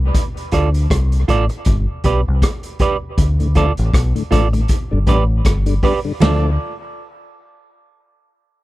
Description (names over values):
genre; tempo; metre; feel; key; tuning
dub reggae; 79 BPM; 4/4; swing 57% on 16ths; D dorian; A4 = 439 Hz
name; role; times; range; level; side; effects
deep dub fingered electric bass; bass; 0.0-6.6 s; G1 to D2; -16 LUFS; equal; transformer saturation
vintage drum kit; drums; 0.1-6.4 s; hi-hat, kick drum, ride cymbal, rim click, snare drum; -19 LUFS; equal; none
semi-hollow electric guitar; accompaniment; 0.5-6.5 s; F4 to D5; -22 LUFS; right 5 dB; dub echo
tonewheel organ; accompaniment; 3.4-6.5 s; D2 to D4; -21 LUFS; left 4 dB; overdrive, slow rotary speaker
congas; percussion; 6.2-6.6 s; none; -25 LUFS; right 4 dB; none
room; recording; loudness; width
little or no reverb; none; -14 LUFS; side -17 dB against mid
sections
0.0-6.2 A section; 6.2-8.6 B section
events
break 0.0-3.2; part muted 0.1-6.2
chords
0.1 Dm; 1.7 G; 3.2 Dm; 4.7 G; 6.2 Dm